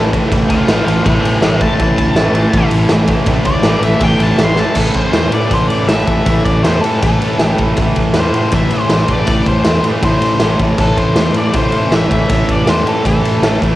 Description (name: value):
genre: garage rock duo or trio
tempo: 160 BPM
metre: 4/4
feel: straight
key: A minor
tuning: A4 = 440 Hz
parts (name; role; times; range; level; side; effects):
- fuzz guitar; riff; 0.0-13.8 s; A2 to A3; -15 LUFS; equal; distortion, cassette tape
- fingered electric bass; bass; 0.0-13.8 s; A1 to A2; -18 LUFS; equal; none
- raw garage drum kit; drums; 0.1-13.7 s; crash cymbal, kick drum, ride cymbal, snare drum; -15 LUFS; equal; cassette tape
- octave-fuzz lead guitar; melody; 0.5-13.6 s; A4 to C6; -20 LUFS; left 2 dB; distortion, cassette tape
room: light reverb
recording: home recording on cassette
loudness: -11 LUFS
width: side -15 dB against mid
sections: 0.0-4.8 A section; 4.8-13.8 B section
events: lead electric guitar solo 0.0-4.8; drum fill 4.6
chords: 0.0 A5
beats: | 0.32 0.69 1.05 1.42 | 1.79 2.16 2.53 2.90 | 3.28 3.65 4.02 4.39 | 4.77 5.14 5.52 5.89 | 6.27 6.64 7.02 7.39 | 7.77 8.15 8.53 8.90 | 9.28 9.66 10.03 10.41 | 10.79 11.16 11.54 11.92 | 12.29 12.67 13.05 13.42